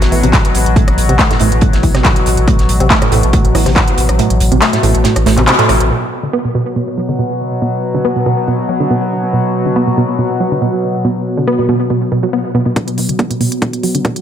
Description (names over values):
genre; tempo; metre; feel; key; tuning
driving peak-time techno; 140 BPM; 4/4; straight; unclear; A4 = 440 Hz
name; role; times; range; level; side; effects
saturated sub bass; bass; 0.0-5.9 s; A1; -15 LUFS; equal; sidechain pumping, low-pass filter
analog drone; drone; 0.0-14.2 s; B2 to F#3; -17 LUFS; left 2 dB; chorus, sidechain pumping
damped 70s drum kit; drums; 0.0-5.8 s; hi-hat, snare drum; -25 LUFS; right 2 dB; high-pass filter on hats, high-pass filter on snare, high-pass filter on room
techno drum kit; drums; 0.0-5.9, 12.8-14.2 s; handclaps, hi-hat, rim click; -17 LUFS; left 1 dB; overdrive, sidechain pumping on hats
analog pluck; riff; 0.1-14.1 s; A2 to B3; -16 LUFS; right 2 dB; chorus, sidechain pumping, analog delay
electronic kick drum; drums; 0.3-3.9, 12.8-14.1 s; none; -13 LUFS; equal; overdrive, high-pass filter on kick
room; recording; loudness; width
moderate lush hall reverb, RT60 2.1 s; dreamy mix soaked in reverb; -11 LUFS; side -9 dB against mid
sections
0.0-5.9 A section; 5.9-12.8 B section; 12.8-14.2 C section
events
kick drops out 4.2-5.9; band accent 5.5; build-up 12.8-14.2; filter sweep on synth arpeggio sound 12.8-14.2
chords
0.0 Am; 5.9 Bm